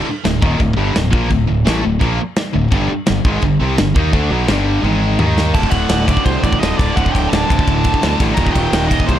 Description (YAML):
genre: heavy metal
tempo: 170 BPM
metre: 4/4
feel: straight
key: unclear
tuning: A4 = 440 Hz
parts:
  - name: distorted electric guitar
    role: riff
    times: 0.0-9.2 s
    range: D2 to Eb4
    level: -21 LUFS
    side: left 1 dB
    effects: overdrive
  - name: high-gain distorted guitar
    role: riff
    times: 0.0-9.2 s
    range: D2 to Eb4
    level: -19 LUFS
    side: equal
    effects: distortion
  - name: modern bright fingered electric bass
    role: bass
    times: 0.0-9.2 s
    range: D1 to Eb2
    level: -19 LUFS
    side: equal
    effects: none
  - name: modern studio drum kit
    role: drums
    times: 0.2-9.2 s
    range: china cymbal, crash cymbal, kick drum, ride cymbal, snare drum, toms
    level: -18 LUFS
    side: equal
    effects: none
  - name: high-gain lead guitar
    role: melody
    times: 5.5-9.2 s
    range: C5 to Bb5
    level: -21 LUFS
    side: right 3 dB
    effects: distortion
room: light reverb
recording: dark, warm production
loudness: -13 LUFS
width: side -11 dB against mid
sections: 0.0-5.5 A section; 5.5-9.2 B section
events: drum fill 4.8-5.5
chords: 0.0 D5; 2.7 G5; 4.8 G#5; 5.2 Eb5; 5.5 D5; 8.4 Eb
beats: 0.25 0.60 0.95 | 1.31 1.66 2.01 2.37 | 2.72 3.07 3.43 3.78 | 4.13 4.49 4.84 5.19 | 5.55 5.90 6.25 6.61 | 6.96 7.31 7.67 8.02 | 8.37 8.73 9.08